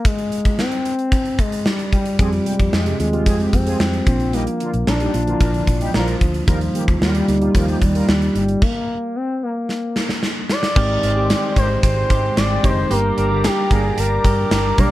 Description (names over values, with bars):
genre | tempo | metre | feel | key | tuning
1980s-style pop | 112 BPM | 4/4 | straight | unclear | A4 = 441 Hz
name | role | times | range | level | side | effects
expressive portamento lead | melody | 0.0-14.9 s | F3 to D5 | -22 LUFS | left 2 dB | chorus
gated 80s drum kit | drums | 0.1-14.9 s | crash cymbal, hi-hat, kick drum, snare drum | -19 LUFS | equal | none
mellow tine electric piano | accompaniment | 2.2-14.9 s | F3 to Ab4 | -23 LUFS | right 3 dB | none
mellow synth brass | stabs | 2.2-14.9 s | Bb2 to Bb4 | -27 LUFS | equal | chorus
vintage muted fingered electric bass | bass | 2.2-14.9 s | Gb1 to Ab2 | -21 LUFS | equal | none
phased analog pad | sustained chords | 10.8-14.9 s | Ab3 to D6 | -28 LUFS | equal | phaser, chorus
direct-recorded clean electric guitar | riff | 10.8-14.9 s | Eb3 to G4 | -28 LUFS | right 5 dB | lush chorus
room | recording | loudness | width
moderate studio reverb, RT60 0.5 s | dark, warm production | -16 LUFS | side -15 dB against mid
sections
0.0-10.8 A section; 10.8-14.9 B section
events
stop 8.6-10.8; drum fill 9.7-10.8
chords
0.0 N.C.; 2.2 Fmadd9; 4.1 Bb; 6.5 Ebadd9; 8.6 N.C.; 10.8 Abmaj7; 12.9 Gm